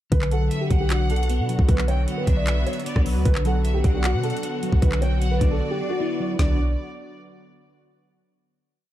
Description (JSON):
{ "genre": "hip hop, trap", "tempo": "153 BPM", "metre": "4/4", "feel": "half-time", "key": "B minor", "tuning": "A4 = 439 Hz", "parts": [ { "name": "dark concert grand piano", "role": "melody", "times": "0.1-6.6 s", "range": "D4 to D5", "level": "-29 LUFS", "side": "right 1 dB", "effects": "digital delay" }, { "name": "clean electric guitar", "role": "accompaniment", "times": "0.1-6.6 s", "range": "D3 to D5", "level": "-28 LUFS", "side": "left 3 dB", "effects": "ensemble chorus" }, { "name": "sweeping resonant pad", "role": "sustained chords", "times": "0.1-6.6 s", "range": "D3 to F#4", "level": "-34 LUFS", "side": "right 1 dB", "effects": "chorus" }, { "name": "warm 808-style bass", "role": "bass", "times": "0.1-6.8 s", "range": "B1 to B2", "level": "-22 LUFS", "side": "equal", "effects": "none" }, { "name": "trap drum kit", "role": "drums", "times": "0.1-6.5 s", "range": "handclaps, hi-hat, kick drum, rim click, snare drum, toms", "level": "-23 LUFS", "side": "equal", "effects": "none" }, { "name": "warm studio violin section", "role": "second line", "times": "0.3-6.6 s", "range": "B4 to G5", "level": "-33 LUFS", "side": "right 2 dB", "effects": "digital delay" } ], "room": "little or no reverb", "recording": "dark, warm production", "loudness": "-20 LUFS", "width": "side -13 dB against mid", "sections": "0.1-6.4 hook; 6.4-8.0 final chord", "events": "break 5.6-6.4", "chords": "0.1 Bm" }